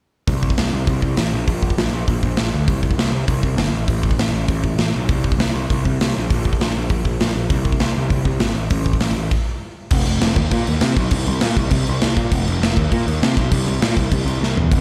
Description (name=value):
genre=punk rock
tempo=199 BPM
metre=4/4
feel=straight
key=unclear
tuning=A4 = 439 Hz
part: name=fuzz picked electric bass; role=bass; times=0.3-14.8 s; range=F1 to C3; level=-22 LUFS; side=equal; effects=overdrive
part: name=big rock drum kit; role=drums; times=0.3-14.8 s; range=crash cymbal, hi-hat, kick drum, snare drum, toms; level=-22 LUFS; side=equal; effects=none
room=little or no reverb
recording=live gig heard through the venue's PA, club reverb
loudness=-19 LUFS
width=mono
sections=0.3-9.9 A section; 9.9-14.8 B section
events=stop 9.3-9.9; drum fill 14.4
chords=none